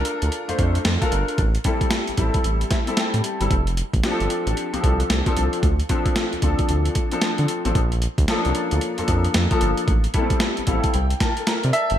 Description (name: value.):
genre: R&B, new jack swing.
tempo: 113 BPM.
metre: 4/4.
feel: swing 62% on 16ths.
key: F major.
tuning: A4 = 440 Hz.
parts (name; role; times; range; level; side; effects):
warm grand piano; accompaniment; 0.0-12.0 s; F3 to Bb5; -24 LUFS; left 2 dB; ensemble chorus.
round analog bass; bass; 0.0-12.0 s; F1 to D3; -22 LUFS; equal; none.
boom bap sampler-style drum kit; drums; 0.1-12.0 s; hi-hat, kick drum, snare drum; -22 LUFS; equal; overdrive, gated reverb.
clear grand piano; melody; 11.7-12.0 s; E5; -19 LUFS; right 1 dB; none.
room: light reverb.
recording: bright 1980s-style digital production.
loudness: -19 LUFS.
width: side -10 dB against mid.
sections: 0.0-12.0 A section.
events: grand piano fill 2.4-3.5, 10.4-12.0.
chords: 0.0 Bbmaj7; 1.4 Am7; 3.5 F6; 5.6 Dm7; 7.8 Bbmaj7; 9.9 Am7; 10.9 C5.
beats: 0.32 0.85 | 1.38 1.91 2.44 2.98 | 3.51 4.04 4.57 5.10 | 5.63 6.16 6.69 7.22 | 7.75 8.29 8.82 9.35 | 9.88 10.41 10.94 11.47.